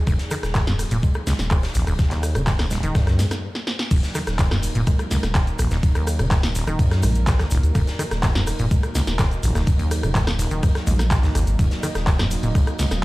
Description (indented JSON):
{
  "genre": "acid house",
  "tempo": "125 BPM",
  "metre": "4/4",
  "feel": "straight",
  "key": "Eb minor",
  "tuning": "A4 = 440 Hz",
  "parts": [
    { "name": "warm analog pad", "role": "sustained chords", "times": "0.0-13.0 s", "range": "Gb3 to Eb5", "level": "-32 LUFS", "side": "right 1 dB", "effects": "chorus, sidechain pumping" },
    { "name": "round analog bass", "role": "bass", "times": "0.0-13.0 s", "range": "Eb1 to Eb2", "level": "-23 LUFS", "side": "equal", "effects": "tube saturation, sidechain pumping" },
    { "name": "acid bass, saw", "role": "riff", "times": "0.1-12.9 s", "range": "Eb1 to Eb3", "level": "-23 LUFS", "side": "equal", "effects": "sidechain pumping, ping-pong delay" },
    { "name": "electronic kick drum", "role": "drums", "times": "0.1-12.6 s", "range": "none", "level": "-19 LUFS", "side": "equal", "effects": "overdrive" },
    { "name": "oversized low-tuned drum kit", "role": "drums", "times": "0.1-12.9 s", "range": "hi-hat, snare drum", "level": "-36 LUFS", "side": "left 1 dB", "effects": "high-pass filter on hats, high-pass filter on snare, high-pass filter on room" },
    { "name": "punchy analog drum machine", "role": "drums", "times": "0.1-13.0 s", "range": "congas, crash cymbal, handclaps, hi-hat, rim click, snare drum", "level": "-27 LUFS", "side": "equal", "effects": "none" },
    { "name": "egg shaker", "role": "percussion", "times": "0.1-13.0 s", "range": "none", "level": "-39 LUFS", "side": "right 1 dB", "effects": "none" }
  ],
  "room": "small room reverb",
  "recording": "played on a big sound system in a bare room, large studio reverb",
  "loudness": "-18 LUFS",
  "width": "side -19 dB against mid",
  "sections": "0.0-3.9 A section; 3.9-13.0 B section",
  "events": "stop 3.4-3.9; drum fill 3.6-3.9; band accent 3.8; drop 3.9-13.0",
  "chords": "0.0 Ebm",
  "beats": "| 0.07 0.55 1.03 1.51 | 1.99 2.47 2.95 3.43 | 3.91 4.39 4.87 5.35 | 5.83 6.31 6.79 7.27 | 7.75 8.23 8.71 9.19 | 9.67 10.15 10.63 11.11 | 11.59 12.07 12.55 13.03"
}